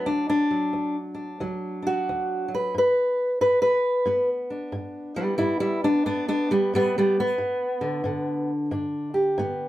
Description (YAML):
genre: acoustic country blues, solo or duo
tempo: 90 BPM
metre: 4/4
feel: swing 62% on 8ths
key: unclear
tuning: A4 = 440 Hz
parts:
  - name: fingerpicked old ladder-braced acoustic guitar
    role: solo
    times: 0.0-9.7 s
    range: D2 to B4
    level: -22 LUFS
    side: equal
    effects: none
room: wet studio reverb, RT60 0.5 s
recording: heard from further back in the room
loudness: -22 LUFS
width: side -14 dB against mid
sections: 0.0-9.7 A section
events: steel-string acoustic guitar solo 0.0-9.7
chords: 0.0 D; 2.7 G